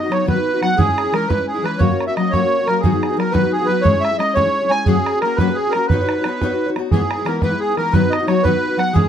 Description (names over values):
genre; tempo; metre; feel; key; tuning
celtic folk, Celtic jig; 118 BPM (dotted quarters); 6/8; straight; B major; A4 = 440 Hz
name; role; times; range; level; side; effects
accordion; melody; 0.0-9.1 s; G#4 to G#5; -18 LUFS; right 2 dB; light tremolo tuning
fingerpicked steel-string acoustic guitar; accompaniment; 0.0-9.1 s; G#2 to C#5; -20 LUFS; left 3 dB; none
bodhran; percussion; 0.1-9.0 s; none; -20 LUFS; right 2 dB; none
room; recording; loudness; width
moderate studio reverb, RT60 0.5 s; minimal, uncompressed stereo recording; -15 LUFS; side -9 dB against mid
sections
0.0-6.9 A section; 6.9-9.1 A section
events
none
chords
0.0 B; 0.8 C#m/E; 1.8 F#; 2.8 G#m7; 3.8 C#m/G#; 4.9 F#add9; 5.9 Badd9; 6.9 E; 7.9 B/D#